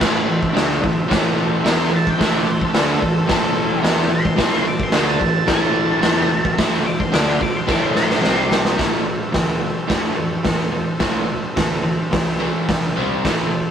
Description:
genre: garage rock duo or trio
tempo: 109 BPM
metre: 4/4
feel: straight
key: A minor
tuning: A4 = 440 Hz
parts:
  - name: overdriven combo organ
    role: sustained chords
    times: 0.0-13.7 s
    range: G4 to G5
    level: -30 LUFS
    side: equal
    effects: none
  - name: crunchy overdriven guitar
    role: riff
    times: 0.0-13.7 s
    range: A2 to E4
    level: -20 LUFS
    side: equal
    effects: none
  - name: fuzz picked electric bass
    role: bass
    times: 0.0-13.6 s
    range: A1 to F2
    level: -29 LUFS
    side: equal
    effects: overdrive
  - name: raw garage drum kit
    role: drums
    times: 0.0-13.4 s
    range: crash cymbal, hi-hat, kick drum, snare drum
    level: -19 LUFS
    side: equal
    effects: none
  - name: octave-fuzz lead guitar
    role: melody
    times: 1.7-8.5 s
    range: A4 to D6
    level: -24 LUFS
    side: right 1 dB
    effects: distortion
room: moderate studio reverb, RT60 0.5 s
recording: rough rehearsal-room recording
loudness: -16 LUFS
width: side -8 dB against mid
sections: 0.0-8.8 A section; 8.8-13.7 B section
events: lead electric guitar solo 0.0-8.8; drum fill 7.7-8.8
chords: 0.0 Am; 8.2 C5; 8.8 Am; 13.0 C5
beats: | 0.01 0.56 1.11 1.66 | 2.20 2.75 3.30 3.85 | 4.39 4.94 5.49 6.04 | 6.59 7.14 7.69 8.24 | 8.79 9.35 9.90 10.46 | 11.01 11.57 12.13 12.69 | 13.24

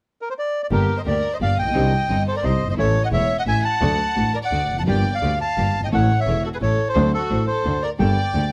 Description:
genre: tango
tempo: 173 BPM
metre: 3/4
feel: rubato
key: G minor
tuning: A4 = 440 Hz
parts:
  - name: bandoneon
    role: melody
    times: 0.2-8.5 s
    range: A4 to A5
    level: -25 LUFS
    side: equal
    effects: none
  - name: warm studio violin section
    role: second line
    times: 0.7-8.5 s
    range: F#4 to F#5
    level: -32 LUFS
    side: equal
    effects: none
  - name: dark concert grand piano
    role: accompaniment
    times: 0.7-8.5 s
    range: E1 to A4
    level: -27 LUFS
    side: equal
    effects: none
  - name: muted studio string section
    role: stabs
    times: 0.7-8.5 s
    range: A3 to C5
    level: -34 LUFS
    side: equal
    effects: none
  - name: clear double bass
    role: bass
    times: 0.7-8.5 s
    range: E1 to D2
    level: -25 LUFS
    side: equal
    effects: none
room: light reverb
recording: close, detailed microphones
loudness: -20 LUFS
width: mono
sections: 0.7-8.5 A section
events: none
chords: 0.0 N.C.; 0.7 Gm; 1.8 Cmadd9; 2.8 A; 3.8 D; 4.9 Gm7; 5.9 A; 7.0 D7; 8.0 Gmadd9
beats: 0.02 0.37 | 0.71 1.06 1.41 | 1.76 2.10 2.44 | 2.78 3.13 3.47 | 3.82 4.17 4.52 | 4.88 5.22 5.58 | 5.92 6.27 6.61 | 6.96 7.30 7.65 | 8.00 8.34

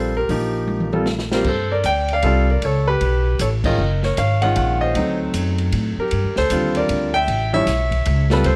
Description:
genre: jazz piano trio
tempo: 155 BPM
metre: 3/4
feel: swing 64% on 8ths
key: unclear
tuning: A4 = 436 Hz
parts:
  - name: clear grand piano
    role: melody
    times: 0.0-8.6 s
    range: D3 to G5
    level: -22 LUFS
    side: equal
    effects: none
  - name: upright bass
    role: bass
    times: 0.0-8.6 s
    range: Gb1 to A2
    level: -23 LUFS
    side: equal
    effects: none
  - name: open jazz drum kit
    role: drums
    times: 0.3-8.6 s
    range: crash cymbal, hi-hat, kick drum, ride cymbal, snare drum, toms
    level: -31 LUFS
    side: equal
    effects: none
room: light reverb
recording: none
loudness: -19 LUFS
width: mono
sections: 0.0-1.5 A section; 1.5-8.6 B section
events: drum fill 0.7-1.5; band accent 3.6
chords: 0.0 Bbsus2; 1.5 Gm9; 2.6 Db7(#5, no3); 3.8 Gbmaj7; 5.0 D7b9; 6.1 Gm9; 7.3 A7b13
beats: | 0.29 0.68 1.07 | 1.46 1.85 2.23 | 2.62 3.01 3.40 | 3.79 4.18 4.56 | 4.95 5.34 5.73 | 6.12 6.50 6.89 | 7.28 7.67 8.06 | 8.45

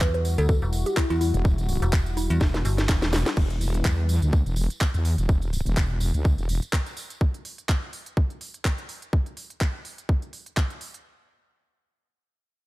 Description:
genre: bass house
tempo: 125 BPM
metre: 4/4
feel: swing 56% on 16ths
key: E minor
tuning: A4 = 440 Hz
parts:
  - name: mallet-like synth pluck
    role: melody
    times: 0.0-2.8 s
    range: E4 to B4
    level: -29 LUFS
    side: left 1 dB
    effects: chorus, phaser, tape echo
  - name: dark analog pad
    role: sustained chords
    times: 0.0-5.3 s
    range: G3 to B4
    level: -35 LUFS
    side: left 4 dB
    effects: chorus, sidechain pumping
  - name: metallic FM bass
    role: bass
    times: 0.0-2.9 s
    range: E1 to E2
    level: -23 LUFS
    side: equal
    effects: overdrive, sidechain pumping
  - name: electronic kick drum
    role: drums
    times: 0.0-10.7 s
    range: none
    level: -22 LUFS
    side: equal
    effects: none
  - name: garage drum kit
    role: drums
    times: 0.0-11.0 s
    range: crash cymbal, handclaps, hi-hat, snare drum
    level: -30 LUFS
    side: equal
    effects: none
  - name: tambourine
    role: percussion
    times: 0.0-7.2 s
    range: none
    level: -42 LUFS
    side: right 2 dB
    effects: none
  - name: wobble bass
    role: bass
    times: 1.3-6.6 s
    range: E1 to E2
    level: -24 LUFS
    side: equal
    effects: chorus, tube saturation, sidechain pumping
room: digital ambience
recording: none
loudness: -22 LUFS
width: side -19 dB against mid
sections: 0.0-3.4 A section; 3.4-11.1 B section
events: drop 0.0-3.4; drum fill 2.4-3.4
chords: 0.0 Em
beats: 0.01 0.49 0.97 | 1.45 1.93 2.41 2.89 | 3.37 3.85 4.33 4.81 | 5.29 5.77 6.25 6.73 | 7.21 7.69 8.17 8.65 | 9.13 9.61 10.09 10.57

